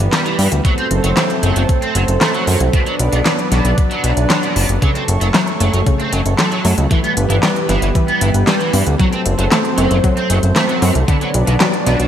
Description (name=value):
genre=synthwave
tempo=115 BPM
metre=4/4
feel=straight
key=unclear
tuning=A4 = 438 Hz
part: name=chorused pulse-width pad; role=sustained chords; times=0.0-12.1 s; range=E3 to C#6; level=-20 LUFS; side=right 1 dB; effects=sidechain pumping
part: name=fat analog bass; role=bass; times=0.0-12.1 s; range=F#1 to G2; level=-15 LUFS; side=equal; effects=none
part: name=pop drum kit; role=drums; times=0.0-12.1 s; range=handclaps, hi-hat, snare drum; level=-19 LUFS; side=equal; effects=small room ambience
part: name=crunchy overdriven guitar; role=riff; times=0.1-12.0 s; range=B2 to C4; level=-22 LUFS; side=right 2 dB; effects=ensemble chorus, digital delay
part: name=electronic kick drum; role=drums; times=0.6-11.2 s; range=none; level=-16 LUFS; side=equal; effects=small room ambience
part: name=warbly dusty pluck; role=arpeggios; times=4.8-12.0 s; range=C#3 to C4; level=-21 LUFS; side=left 2 dB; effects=chorus, cassette tape, digital delay
room=moderate lush hall reverb, RT60 1.8 s, digital ambience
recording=bright 1980s-style digital production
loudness=-13 LUFS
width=side -10 dB against mid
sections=0.0-12.1 A section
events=none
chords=0.0 Em/G; 0.6 F#dim; 2.7 Bm; 4.8 F#m; 6.9 Em/G; 9.0 F#dim; 11.1 Bm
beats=0.13 | 0.65 1.17 1.69 2.21 | 2.73 3.26 3.78 4.30 | 4.82 5.34 5.87 6.39 | 6.91 7.43 7.95 8.47 | 9.00 9.52 10.04 10.56 | 11.08 11.60